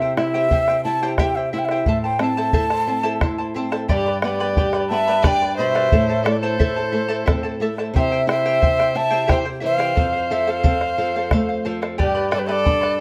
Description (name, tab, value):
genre	andean folk, Andean ensemble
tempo	89 BPM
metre	3/4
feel	straight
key	unclear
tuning	A4 = 440 Hz
part	mellow quena	melody	0.0-13.0 s	B4 to A5	-24 LUFS	equal	none
part	charango	accompaniment	0.0-13.0 s	E4 to B5	-29 LUFS	equal	none
part	flamenco guitar	accompaniment	0.0-13.0 s	F2 to C5	-28 LUFS	equal	none
part	bombo	percussion	0.2-13.0 s	none	-23 LUFS	equal	none
part	dark fiddle	second line	3.9-13.0 s	G4 to E5	-27 LUFS	equal	none
room	moderate studio ambience, RT60 0.5 s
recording	none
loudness	-20 LUFS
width	mono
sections	0.0-3.9 A section; 3.9-13.0 A section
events	none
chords	0.0 C; 1.9 Am; 3.9 G; 5.9 Am; 7.9 C; 10.0 F; 12.0 G